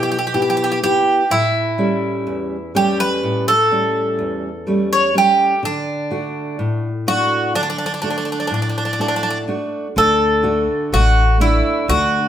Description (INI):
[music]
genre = greek folk, Greek bouzouki band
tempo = 125 BPM (eighths)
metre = 9/8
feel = straight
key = D major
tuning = A4 = 441 Hz
[part]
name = Greek bouzouki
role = melody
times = 0.0-12.3 s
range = D4 to C#5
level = -17 LUFS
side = right 1 dB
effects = none
[part]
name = fingerpicked steel-string acoustic guitar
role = accompaniment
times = 0.0-12.3 s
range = E2 to G4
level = -21 LUFS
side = equal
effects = none
[part]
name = upright bass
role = bass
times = 10.0-12.3 s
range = A1 to D2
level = -17 LUFS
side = left 1 dB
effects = none
[sound]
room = moderate stone room reverb, RT60 1.1 s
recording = band playing live in one room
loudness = -15 LUFS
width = side -10 dB against mid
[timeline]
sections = 0.0-10.0 A section; 10.0-12.3 B section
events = none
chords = 0.0 Em; 1.3 A7; 5.6 D